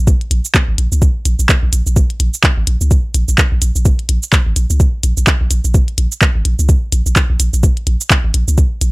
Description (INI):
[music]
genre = minimal techno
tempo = 127 BPM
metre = 4/4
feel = swing 58% on 16ths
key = Bb minor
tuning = A4 = 440 Hz
[part]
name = punchy sub bass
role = bass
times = 0.0-8.9 s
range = Ab1 to Db2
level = -14 LUFS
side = equal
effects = sidechain pumping
[part]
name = electronic kick drum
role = drums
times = 0.1-8.7 s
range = none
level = -12 LUFS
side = equal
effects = small room ambience
[part]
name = minimal click drum kit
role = drums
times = 0.1-8.9 s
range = handclaps, hi-hat, shaker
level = -16 LUFS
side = right 1 dB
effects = small room ambience
[sound]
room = little or no reverb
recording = none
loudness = -11 LUFS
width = side -23 dB against mid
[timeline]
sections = 0.0-8.9 A section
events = none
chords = none